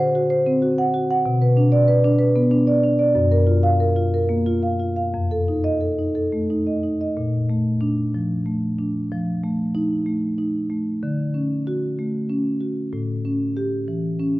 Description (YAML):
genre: classical, contemporary piece for solo marimba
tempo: 62 BPM (dotted quarters)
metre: 6/8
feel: rubato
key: unclear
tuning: A4 = 439 Hz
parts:
  - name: marimba with soft mallets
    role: solo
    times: 0.0-14.4 s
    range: F2 to F#5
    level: -18 LUFS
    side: equal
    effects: none
room: moderate recital hall reverb, RT60 1.5 s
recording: worn, warbling old tape, cassette tape, warbly pitch drift, nothing above 7.8 kHz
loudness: -18 LUFS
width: side -18 dB against mid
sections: 0.0-7.2 A section; 7.2-14.4 B section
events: none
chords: 0.0 D7; 1.3 Bm; 3.1 Gbmaj7; 5.1 F7; 7.2 Bbmaj7; 9.1 F7; 11.0 Dmaj7; 12.9 A7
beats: 0.30 | 1.25 2.19 | 3.15 4.13 | 5.13 6.14 | 7.15 8.13 | 9.10 10.06 | 11.03 11.98 | 12.92 13.88